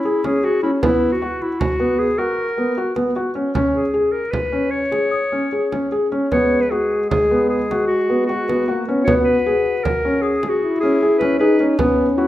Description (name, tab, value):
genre	contemporary instrumental, chamber music in an uneven meter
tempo	154 BPM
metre	7/4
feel	straight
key	C# dorian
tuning	A4 = 440 Hz
part	clear clarinet	melody	0.0-12.3 s	E4 to C#5	-21 LUFS	left 1 dB	none
part	felt-muted upright piano	arpeggios	0.1-12.3 s	B3 to G#4	-19 LUFS	equal	none
part	frame drum	percussion	0.2-12.0 s	none	-26 LUFS	right 2 dB	none
part	celesta	texture	5.1-5.9, 10.2-11.0 s	D#6	-31 LUFS	left 3 dB	none
part	mellow French horn	second line	6.3-12.3 s	G#3 to F#4	-22 LUFS	left 1 dB	none
room	wet recital hall reverb, RT60 1.4 s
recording	none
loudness	-16 LUFS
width	side -14 dB against mid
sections	0.0-12.3 A section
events	none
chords	0.0 C#m; 0.8 F#sus4; 3.5 C#5; 6.3 B5; 9.1 C#m7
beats	0.05 0.44 | 0.83 1.22 1.60 1.99 2.38 2.77 3.16 | 3.55 3.94 4.34 4.73 5.12 5.52 5.92 | 6.32 6.72 7.11 7.51 7.90 8.29 8.68 | 9.07 9.46 9.85 10.24 10.63 11.01 11.40 | 11.78 12.17